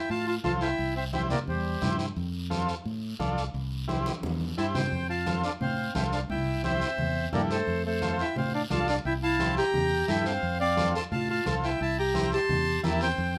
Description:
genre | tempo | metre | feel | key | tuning
latin, cumbia | 174 BPM | 4/4 | straight | F major | A4 = 442 Hz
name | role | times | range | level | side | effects
accordion | melody | 0.0-2.0, 4.6-13.4 s | G4 to C6 | -33 LUFS | equal | none
breathy clarinet | second line | 0.0-2.0, 4.6-13.3 s | G3 to A4 | -35 LUFS | equal | none
fingered electric bass | bass | 0.1-13.4 s | C2 to A2 | -34 LUFS | equal | none
congas | percussion | 0.1-13.4 s | none | -37 LUFS | equal | none
guiro | percussion | 0.1-13.4 s | none | -45 LUFS | equal | none
overdriven combo organ | accompaniment | 0.4-13.1 s | E4 to D5 | -35 LUFS | equal | none
room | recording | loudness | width
moderate studio reverb, RT60 0.7 s | none | -28 LUFS | mono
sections
0.0-4.9 A section; 4.9-13.4 A section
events
drum fill 4.1-4.9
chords
0.0 F; 0.8 C; 2.2 F; 3.5 C; 4.9 F; 6.3 C; 7.7 F; 9.1 C7; 10.4 F; 11.8 C7

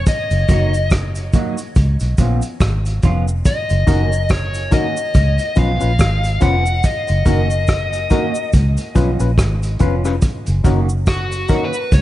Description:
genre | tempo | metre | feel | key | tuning
roots reggae | 71 BPM | 4/4 | swing 58% on 16ths | F# major | A4 = 439 Hz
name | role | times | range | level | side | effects
dark smooth lead guitar | melody | 0.0-12.0 s | F#4 to F#5 | -22 LUFS | left 2 dB | overdrive, dub echo
vintage muted fingered electric bass | bass | 0.0-12.0 s | E#1 to C#2 | -17 LUFS | equal | none
vintage drum kit | drums | 0.1-12.0 s | hi-hat, kick drum, rim click | -17 LUFS | equal | none
cabasa | percussion | 0.1-12.0 s | none | -37 LUFS | right 2 dB | none
electric guitar at the edge of break-up | accompaniment | 0.5-11.8 s | D#3 to F#4 | -25 LUFS | right 3 dB | phaser, dub echo
percussive organ stab | stabs | 3.9-11.6 s | C#4 to B4 | -25 LUFS | left 6 dB | chorus
room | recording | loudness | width
small room ambience | nothing above 10.9 kHz | -14 LUFS | side -14 dB against mid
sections
0.0-12.0 A section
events
none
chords
0.1 F#6; 1.8 C#7; 3.5 F#6; 5.1 C#7; 6.8 F#6; 8.5 C#7; 10.2 F#6

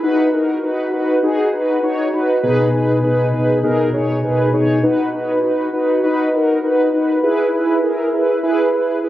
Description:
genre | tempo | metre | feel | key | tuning
pop | 100 BPM | 4/4 | straight | B major | A4 = 441 Hz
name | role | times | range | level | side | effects
mellow synth brass | solo | 0.0-9.1 s | B2 to C#5 | -14 LUFS | equal | chorus, ping-pong delay
room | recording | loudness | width
moderate lush hall reverb, RT60 2.5 s | recorded on a phone in the room, club reverb | -14 LUFS | side -14 dB against mid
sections
0.0-9.1 A section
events
none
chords
0.0 B; 2.4 G#m/B; 4.8 B; 7.2 E

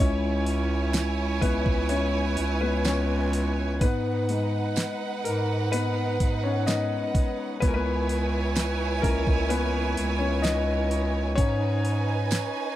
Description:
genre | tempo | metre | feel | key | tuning
pop ballad | 63 BPM | 4/4 | straight | unclear | A4 = 442 Hz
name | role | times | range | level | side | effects
rich studio violin section | second line | 0.0-12.8 s | D#4 to G#5 | -31 LUFS | right 6 dB | none
warm upright piano | accompaniment | 0.0-12.8 s | G#3 to D#5 | -28 LUFS | left 4 dB | none
mellow bass clarinet | bass | 0.0-12.5 s | C#2 to G#2 | -27 LUFS | right 1 dB | none
smooth R&B drum kit | drums | 0.5-12.5 s | hi-hat, kick drum, snare drum | -26 LUFS | right 1 dB | none
tambourine | percussion | 0.9-12.5 s | none | -38 LUFS | right 29 dB | none
room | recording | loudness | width
little or no reverb | dry, close 1970s-style studio recording | -23 LUFS | side -13 dB against mid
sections
0.0-12.8 A section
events
upright piano solo 0.0-12.8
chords
0.0 C#m; 3.8 G#m; 7.6 C#m; 11.4 G#m

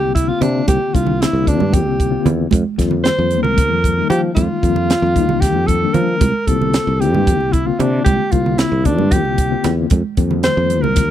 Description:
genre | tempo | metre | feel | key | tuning
electric jazz fusion | 227 BPM (eighths) | 7/8 | straight | unclear | A4 = 438 Hz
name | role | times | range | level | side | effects
breathy alto saxophone | melody | 0.0-11.1 s | D4 to C5 | -18 LUFS | right 1 dB | none
mellow reed electric piano | accompaniment | 0.0-11.1 s | D3 to G4 | -21 LUFS | left 12 dB | fast tremolo
sustaining fretless electric bass | bass | 0.0-11.1 s | C2 to F3 | -18 LUFS | equal | none
congas | percussion | 0.0-11.0 s | none | -22 LUFS | right 7 dB | none
crisp fusion drum kit | drums | 0.2-11.1 s | hi-hat, kick drum, snare drum | -17 LUFS | right 1 dB | none
room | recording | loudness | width
studio ambience | dry, close 1970s-style studio recording | -13 LUFS | side -11 dB against mid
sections
0.0-11.1 A section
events
none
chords
0.0 C9sus4; 2.5 F9sus4; 6.2 C9sus4; 9.9 F9sus4

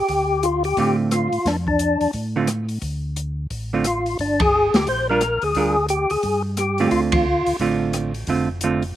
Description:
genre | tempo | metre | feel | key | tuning
soul jazz organ trio | 176 BPM | 4/4 | swing 62% on 8ths | D minor | A4 = 440 Hz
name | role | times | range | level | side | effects
percussive tonewheel organ | melody | 0.0-7.6 s | D4 to C5 | -19 LUFS | left 1 dB | slow rotary speaker, overdrive, chorus vibrato, slapback echo
mellow tonewheel organ | bass | 0.0-8.9 s | F1 to A2 | -26 LUFS | equal | chorus vibrato, slow rotary speaker
open jazz drum kit | drums | 0.1-8.9 s | hi-hat, kick drum, ride cymbal, rim click, snare drum | -26 LUFS | equal | none
hollow-body jazz guitar | accompaniment | 0.8-8.8 s | D3 to Bb4 | -21 LUFS | right 4 dB | none
room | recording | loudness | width
little or no reverb | recorded outdoors, with no room sound | -18 LUFS | side -12 dB against mid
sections
0.0-9.0 A section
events
band accent 4.4, 7.1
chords
0.0 Dm7; 4.2 Gm7; 6.9 Dm7

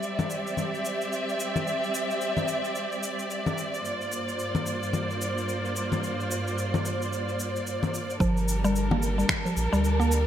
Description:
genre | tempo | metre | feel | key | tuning
organic downtempo | 110 BPM | 4/4 | swing 60% on 16ths | G dorian | A4 = 443 Hz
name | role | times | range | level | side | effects
dark studio string section | sustained chords | 0.0-10.3 s | G2 to E5 | -28 LUFS | right 1 dB | sidechain pumping
electronic shaker, congas and finger snaps | drums | 0.0-10.2 s | none | -31 LUFS | left 3 dB | none
mallet-like synth pluck | arpeggios | 8.2-10.1 s | F3 to Bb3 | -27 LUFS | equal | chorus, digital delay
warm sub bass | bass | 8.2-10.3 s | G1 to D2 | -26 LUFS | equal | none
electronic kick drum | drums | 8.2-9.4 s | none | -28 LUFS | equal | overdrive
room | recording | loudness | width
moderate lush hall reverb, RT60 2.0 s, digital ambience | bright 1980s-style digital production | -25 LUFS | side -10 dB against mid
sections
0.0-8.2 A section; 8.2-10.3 B section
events
filter sweep on string section 0.0-8.2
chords
0.0 C/G; 3.8 Bb/G; 8.2 Gm7

